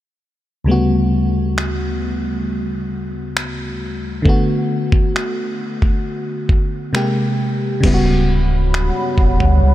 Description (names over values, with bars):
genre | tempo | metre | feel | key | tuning
contemporary R&B | 67 BPM | 4/4 | straight | unclear | A4 = 440 Hz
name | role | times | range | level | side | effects
FM electric piano | accompaniment | 0.6-9.7 s | D2 to G4 | -18 LUFS | equal | chorus
dusty soul sampler-style drum kit | drums | 1.6-9.6 s | crash cymbal, finger snaps, kick drum | -19 LUFS | equal | none
deep dark ambient pad | sustained chords | 8.4-9.7 s | G3 to C#6 | -22 LUFS | right 2 dB | chorus, built-in reverb
sub bass with octave | bass | 7.8-9.7 s | D1 to D2 | -16 LUFS | equal | none
room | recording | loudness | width
moderate huge ambient reverb, RT60 8.6 s | dreamy mix soaked in reverb | -16 LUFS | side -14 dB against mid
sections
0.7-7.8 A section; 7.8-9.7 B section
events
none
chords
0.7 A13/D; 4.3 D6; 6.9 G#maj9; 7.8 A13/D (rootless)